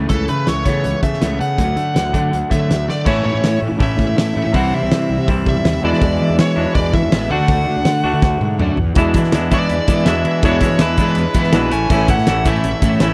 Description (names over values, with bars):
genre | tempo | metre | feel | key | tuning
indie rock | 163 BPM | 4/4 | straight | E mixolydian | A4 = 441 Hz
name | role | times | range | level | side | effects
crunchy overdriven guitar | riff | 0.0-13.1 s | E2 to F#4 | -25 LUFS | equal | none
sludgy distorted guitar | riff | 0.0-13.1 s | A2 to F#4 | -24 LUFS | equal | overdrive, ensemble chorus, tape echo
fuzz fingered electric bass | bass | 0.0-13.1 s | A1 to E3 | -22 LUFS | equal | overdrive
nasal lead guitar with a parked wah | melody | 0.1-13.1 s | A4 to G#5 | -24 LUFS | equal | overdrive, tape echo
loose indie drum kit | drums | 0.1-13.1 s | crash cymbal, hi-hat, kick drum, ride cymbal, snare drum, toms | -21 LUFS | equal | none
tube shaker | percussion | 9.0-13.1 s | none | -44 LUFS | equal | none
room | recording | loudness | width
little or no reverb | none | -16 LUFS | mono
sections
0.0-3.1 A section; 3.1-9.0 B section; 9.0-13.1 C section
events
drum fill 2.9, 8.2-9.0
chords
0.0 Aadd9/C#; 1.6 D; 3.1 A; 4.5 C; 5.8 E7; 7.3 D; 9.0 E7; 11.7 A6